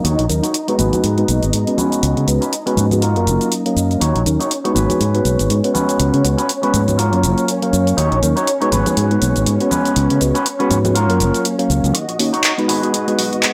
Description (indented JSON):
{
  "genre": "filtered disco house",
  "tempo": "121 BPM",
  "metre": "4/4",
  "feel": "swing 57% on 16ths",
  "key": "Eb minor",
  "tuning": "A4 = 440 Hz",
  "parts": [
    { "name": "bell-like tine electric piano", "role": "accompaniment", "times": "0.0-13.5 s", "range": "Gb3 to F5", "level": "-22 LUFS", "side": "equal", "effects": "phaser, low-pass filter" },
    { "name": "dark symphonic violin section", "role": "sustained chords", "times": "0.0-13.5 s", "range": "Db4 to Eb5", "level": "-27 LUFS", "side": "equal", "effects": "vintage 12-bit sampler grit, low-pass filter" },
    { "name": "electric guitar at the edge of break-up", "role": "riff", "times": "0.0-13.5 s", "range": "Db4 to Db5", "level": "-24 LUFS", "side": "equal", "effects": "vintage 12-bit sampler grit, low-pass filter" },
    { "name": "fingered electric bass", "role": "bass", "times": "0.0-13.5 s", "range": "Gb1 to Db3", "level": "-20 LUFS", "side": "equal", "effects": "tube saturation, high-pass filter, low-pass filter" },
    { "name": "punchy analog drum machine", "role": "drums", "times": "0.0-13.5 s", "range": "handclaps, hi-hat, shaker", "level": "-23 LUFS", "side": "equal", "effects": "none" },
    { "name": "tambourine and congas", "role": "percussion", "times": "0.0-11.9 s", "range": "none", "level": "-28 LUFS", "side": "equal", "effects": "none" }
  ],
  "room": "light reverb, digital ambience",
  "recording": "dry, gritty hardware recording",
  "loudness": "-16 LUFS",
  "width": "mono",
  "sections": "0.0-11.9 A section; 11.9-13.5 B section",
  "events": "filter sweep 0.0-11.9, 11.9-13.5; build-up 11.9-13.5",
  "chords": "0.0 Ebm7; 0.8 Abm7; 1.8 Db7sus4; 3.0 Gbmaj7; 4.0 Ebm7; 4.8 Abm7; 5.7 Db7sus4; 7.0 Gbmaj7; 8.0 Ebm7; 8.7 Abm7; 9.7 Db7sus4; 11.0 Gbmaj7; 11.9 Ebm7; 12.7 Abm7",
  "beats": "| 0.05 0.54 1.04 1.53 | 2.03 2.52 3.02 3.52 | 4.01 4.51 5.00 5.50 | 6.00 6.49 6.99 7.48 | 7.98 8.47 8.97 9.47 | 9.96 10.46 10.96 11.45 | 11.95 12.44 12.94 13.43"
}